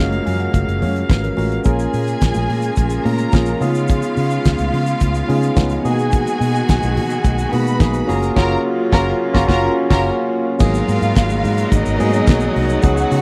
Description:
disco; 107 BPM; 4/4; straight; G# dorian; A4 = 439 Hz
tine electric piano; accompaniment; 0.0-13.2 s; F#3 to G#5; -22 LUFS; equal
clear studio string section; sustained chords; 0.0-13.2 s; B2 to E#5; -26 LUFS; equal
vintage muted fingered electric bass; bass; 0.0-13.2 s; F#1 to C#3; -22 LUFS; equal
damped 70s drum kit; drums; 0.1-13.2 s; crash cymbal, hi-hat, kick drum, snare drum; -17 LUFS; equal
congas; percussion; 0.1-13.2 s; -31 LUFS; equal
rich studio string section; second line; 1.6-13.2 s; D#4 to B5; -26 LUFS; equal
tube shaker; percussion; 1.6-13.2 s; -43 LUFS; equal
little or no reverb; dry, close 1970s-style studio recording; -17 LUFS; mono
0.0-1.7 A section; 1.7-10.6 B section; 10.6-13.2 C section
tine electric piano fill 0.0-1.7; band accent 8.4-10.6
0.0 F#maj7; 1.7 A#m7; 3.6 C#7; 5.8 G#m7/B; 8.1 F#maj7; 10.6 G#m9

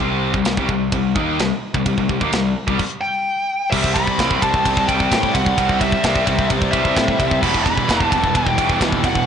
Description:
heavy metal; 130 BPM; 4/4; straight; A4 = 440 Hz
distorted electric guitar; riff; 0.0-9.3 s; C3 to D#4; -23 LUFS; left 8 dB; distortion
tight distorted guitar; riff; 0.0-9.2 s; E2 to D#4; -24 LUFS; right 9 dB; distortion
fuzz picked electric bass; bass; 0.0-9.2 s; E1 to A2; -25 LUFS; equal; overdrive
tight metal drum kit; drums; 0.3-9.3 s; crash cymbal, kick drum, ride cymbal, snare drum; -21 LUFS; equal; soft clipping on snare
high-gain lead guitar; melody; 3.0-9.3 s; E5 to B5; -20 LUFS; equal; distortion
warm chamber string section; sustained chords; 3.7-9.3 s; C3 to B4; -35 LUFS; right 1 dB
overdriven electric guitar; riff; 3.7-9.3 s; E2 to C4; -25 LUFS; right 2 dB
light reverb; blown-out, overdriven recording, overdrive, nothing above 10.6 kHz; -16 LUFS; side -8 dB against mid
0.0-3.7 A section; 3.7-9.3 B section
stop 2.8-3.7
0.0 C5; 3.0 N.C.; 3.7 C; 7.4 Em

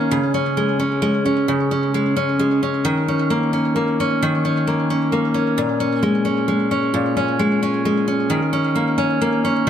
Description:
pop; 44 BPM (dotted quarters); 6/8; straight; A4 = 440 Hz
picked steel-string acoustic guitar; solo; 0.0-9.7 s; Bb2 to Db4; -17 LUFS; equal; ping-pong delay
moderate plate reverb, RT60 3.3 s; -17 LUFS; side -9 dB against mid
0.0-9.7 A section
0.1 Db5; 5.6 Bbm7

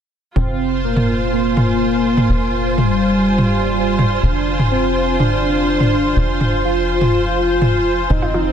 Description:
melodic techno; 124 BPM; 4/4; straight; F dorian; A4 = 440 Hz
wide unison lead; melody; 0.4-8.5 s; G3 to F4; -18 LUFS; equal; digital delay
evolving wavetable pad; sustained chords; 0.8-8.5 s; Eb3 to C6; -23 LUFS; left 2 dB; chorus, built-in reverb
tight sequencer bass; bass; 0.4-8.5 s; F1; -22 LUFS; equal
electronic toms; drums; 0.4-8.2 s; -18 LUFS; equal
rich studio string section; texture; 0.4-8.5 s; C4 to C5; -22 LUFS; right 4 dB
analog pluck; arpeggios; 8.2-8.4 s; F3 to F4; -22 LUFS; left 1 dB; chorus
digital ambience; dense, heavily limited modern master; -14 LUFS; side -8 dB against mid
0.4-8.5 A section
filter sweep on ambient pad 0.4-8.5
0.4 Fm

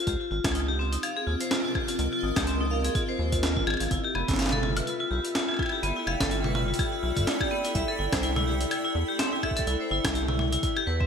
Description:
IDM; 125 BPM; 4/4; swing 56% on 16ths; A4 = 438 Hz
vibraphone with hard mallets; arpeggios; 0.0-11.1 s; B3 to F5; -29 LUFS; left 3 dB; ping-pong delay
granular cloud pad; sustained chords; 0.8-11.1 s; C4 to G5; -34 LUFS; right 2 dB; built-in reverb, analog chorus
round analog bass; bass; 0.1-11.1 s; F1 to E2; -29 LUFS; right 1 dB
electronic kick drum; drums; 0.1-11.1 s; -31 LUFS; right 1 dB
jungle sampler-style drum kit; drums; 0.1-10.8 s; hi-hat, snare drum, toms, woodblock; -30 LUFS; equal; overdrive, gated reverb
bubbling stepped-filter texture; texture; 3.9-11.1 s; E4 to E5; -39 LUFS; right 1 dB; chorus, built-in reverb
moderate lush hall reverb, RT60 1.8 s; bright 1980s-style digital production; -24 LUFS; side -7 dB against mid
0.0-11.1 A section
0.1 Dbsus2; 3.9 Gsus2; 7.8 C

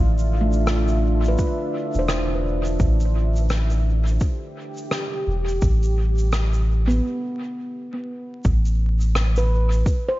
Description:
ambient dub; 85 BPM; 4/4; swing 60% on 16ths; A4 = 440 Hz
deep dark ambient pad; sustained chords; 0.0-10.2 s; D4 to E5; -28 LUFS; right 1 dB; chorus, built-in reverb
soft dub sub bass; bass; 0.0-9.8 s; E1 to A1; -19 LUFS; equal; tube saturation
shaker and rim click; drums; 0.2-10.0 s; -30 LUFS; equal; dub echo
handpan; arpeggios; 0.4-10.2 s; A3 to C5; -28 LUFS; right 1 dB; tape echo
electronic kick drum; drums; 1.4-10.0 s; -22 LUFS; equal
small room ambience; vinyl crackle, nothing above 7.5 kHz; -19 LUFS; side -17 dB against mid
0.0-8.4 A section; 8.4-10.2 B section
break 7.0-8.4
0.0 Dmadd9; 8.4 A5

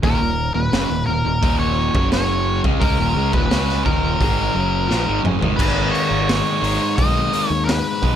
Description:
classic rock; 86 BPM; 4/4; straight; Eb minor; A4 = 437 Hz
octave-fuzz lead guitar; melody; 0.0-8.1 s; Bb4 to Eb5; -23 LUFS; left 1 dB; distortion
distorted electric guitar; riff; 0.0-8.2 s; Eb2 to Eb4; -24 LUFS; right 11 dB; distortion
sludgy distorted guitar; riff; 0.0-8.2 s; Eb2 to Db4; -24 LUFS; left 9 dB; overdrive
growling fingered electric bass; bass; 0.0-8.2 s; Eb1 to Eb2; -24 LUFS; equal; overdrive
raw garage drum kit; drums; 0.0-8.2 s; crash cymbal, hi-hat, kick drum, snare drum, toms; -21 LUFS; equal
small room reverb; -16 LUFS; side -9 dB against mid
0.0-5.6 A section; 5.6-8.2 B section
drum fill 4.9-5.6
0.0 Ebm; 1.9 Gb5; 2.6 Ebm; 5.6 Abmadd9

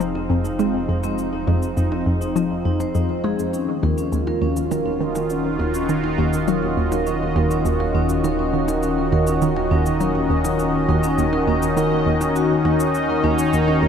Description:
ambient, sequencer-driven space music; 102 BPM; 4/4; straight; Eb dorian; A4 = 440 Hz
sweeping resonant pad; sustained chords; 0.0-13.9 s; Eb3 to F5; -22 LUFS; left 1 dB; chorus
vibraphone with soft mallets; arpeggios; 0.0-13.7 s; C4 to Db5; -25 LUFS; moving between left 6 dB and right 2 dB; auto-pan, tape echo
hollow square pluck; riff; 0.0-13.9 s; Eb2 to Ab3; -22 LUFS; right 1 dB; chorus, phaser, tape echo
round analog bass; bass; 0.0-13.9 s; Eb1 to F1; -33 LUFS; equal
cabasa and percussion blips; percussion; 0.0-13.8 s; -35 LUFS; left 1 dB; tape echo
bubbling stepped-filter texture; texture; 0.0-13.9 s; C4 to Eb5; -30 LUFS; right 3 dB; chorus, built-in reverb
wet huge ambient reverb, RT60 8.2 s; in a vast, echoing space; -18 LUFS; side -7 dB against mid
0.0-13.9 A section
fade-in on analog synth bass 0.0-13.9; fade-in on synth texture 0.0-13.9; fade-in on drum 0.0-13.9
0.0 Fm7; 3.5 Ebm7

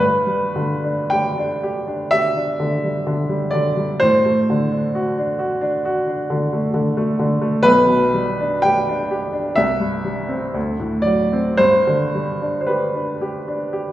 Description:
classical, romantic nocturne for solo piano; 50-68 BPM; 4/4; rubato; G major; A4 = 440 Hz
warm upright piano; solo; 0.0-13.9 s; B1 to G5; -17 LUFS; equal
wet recital hall reverb, RT60 1.6 s; heard from further back in the room; -17 LUFS; side -14 dB against mid
0.0-13.9 A section
0.0 G; 4.0 D7/A; 7.6 G/B; 9.6 C; 10.6 D7; 11.6 G

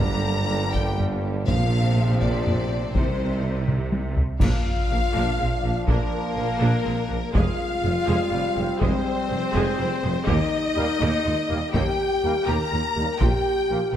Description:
cinematic, epic orchestral film score; 82 BPM (dotted quarters); 6/8; straight; A4 = 440 Hz
warm symphonic violin section; melody; 0.0-14.0 s; Bb4 to Bb5; -32 LUFS; left 5 dB
warm symphonic violin section; second line; 0.0-13.9 s; D4 to Bb5; -32 LUFS; left 3 dB
warm symphonic viola section; accompaniment; 0.0-14.0 s; G3 to Ab4; -32 LUFS; right 1 dB
dark French horn section; sustained chords; 0.0-14.0 s; Bb3 to Bb4; -28 LUFS; left 2 dB
mellow trombone section; sustained chords; 0.0-13.8 s; C3 to D4; -33 LUFS; right 2 dB
clear symphonic double bass section; bass; 0.0-14.0 s; F1 to Eb2; -28 LUFS; right 2 dB
mellow tuba; bass; 0.0-14.0 s; F1 to Eb2; -32 LUFS; right 3 dB
rich symphonic cello section; bass; 0.0-14.0 s; Eb2 to C3; -30 LUFS; right 1 dB
taiko ensemble; drums; 0.0-13.7 s; -25 LUFS; equal
timpani; percussion; 3.0-3.6 s; C3; -35 LUFS; equal
clash cymbals and concert bass drum; percussion; 4.4-5.4 s; -28 LUFS; equal
moderate scoring stage reverb, RT60 1.9 s; -20 LUFS; side -10 dB against mid
0.0-4.4 A section; 4.4-14.0 B section
drum fill 3.7-4.4; band accent 4.4-4.9
0.0 Gm; 1.5 Bbadd9; 2.9 Cm; 4.4 Bb; 7.3 Fmadd9; 10.3 Eb; 13.2 Bb5

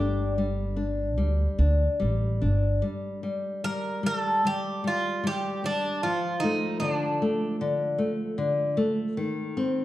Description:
fado-style ballad; 75 BPM; 4/4; rubato; A4 = 440 Hz
Greek bouzouki; melody; 0.0-7.6 s; D4 to Bb4; -28 LUFS; right 2 dB
nylon-string guitar; accompaniment; 0.0-9.8 s; D3 to D4; -27 LUFS; left 2 dB
upright bass; bass; 0.0-2.8 s; G1 to D2; -24 LUFS; equal
moderate recital hall reverb, RT60 1.3 s; dark, warm production; -24 LUFS; side -15 dB against mid
0.0-2.8 A section; 2.8-9.8 B section
0.0 G5; 2.8 N.C.; 6.0 Dm; 9.2 Cm/Eb

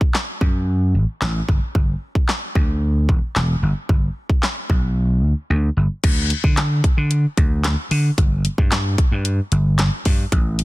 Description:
dance-pop; 112 BPM; 4/4; straight; G major; A4 = 440 Hz
house drum kit; drums; 0.0-10.6 s; crash cymbal, handclaps, hi-hat, kick drum, snare drum; -18 LUFS; equal
vintage slap bass; bass; 0.4-10.6 s; E1 to D3; -18 LUFS; equal; sidechain pumping
little or no reverb; dense, heavily limited modern master; -16 LUFS; side -19 dB against mid
0.0-6.0 A section; 6.0-10.6 B section
drums muted 5.0-6.0

